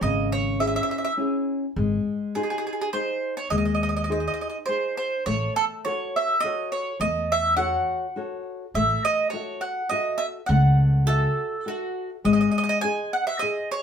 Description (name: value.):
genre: italian folk, Italian serenade.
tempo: 103 BPM.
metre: 3/4.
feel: straight.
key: unclear.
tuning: A4 = 440 Hz.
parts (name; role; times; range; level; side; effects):
mandolin; melody; 0.0-13.8 s; G#4 to G#5; -24 LUFS; right 2 dB; none.
flamenco guitar; accompaniment; 0.0-13.8 s; C#3 to E5; -28 LUFS; left 3 dB; none.
upright bass; bass; 0.0-12.4 s; G#1 to E2; -24 LUFS; equal; none.
bowl-back mandolin; second line; 11.1-12.1 s; F#4 to A4; -28 LUFS; right 3 dB; none.
room: wet studio reverb, RT60 0.6 s.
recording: band playing live in one room.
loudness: -22 LUFS.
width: side -7 dB against mid.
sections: 0.0-13.8 A section.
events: none.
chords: 0.0 C#m; 1.8 G#; 5.3 A6; 12.3 G#.